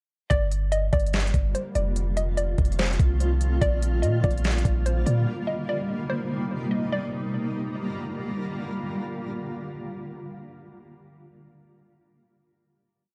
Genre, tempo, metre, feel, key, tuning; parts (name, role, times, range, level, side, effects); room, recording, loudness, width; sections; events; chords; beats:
hip hop, atmospheric cloud-rap; 145 BPM; 4/4; half-time; G minor; A4 = 441 Hz
hollow square pluck; melody; 0.3-8.1 s; C5 to Eb5; -33 LUFS; equal; chorus, tape echo
granular cloud pad; sustained chords; 1.3-9.9 s; C3 to F4; -33 LUFS; equal; built-in reverb, sidechain pumping
long sustained 808-style bass; bass; 0.3-5.3 s; F1 to Bb2; -26 LUFS; equal
smooth R&B drum kit; drums; 0.3-5.2 s; hi-hat, kick drum, snare drum; -27 LUFS; equal
little or no reverb; dark, warm production; -26 LUFS; mono
0.3-6.9 verse; 6.9-10.2 final chord
0.3 Gm7; 2.0 F7; 3.6 Bb6; 5.3 Cm7; 6.9 Gm7
| 0.31 0.72 1.13 1.55 | 1.96 2.38 2.79 3.20 | 3.62 4.03 4.44 4.86 | 5.27 5.68 6.10 6.51 | 6.93 7.34 7.75 8.17 | 8.58 9.00 9.41 9.82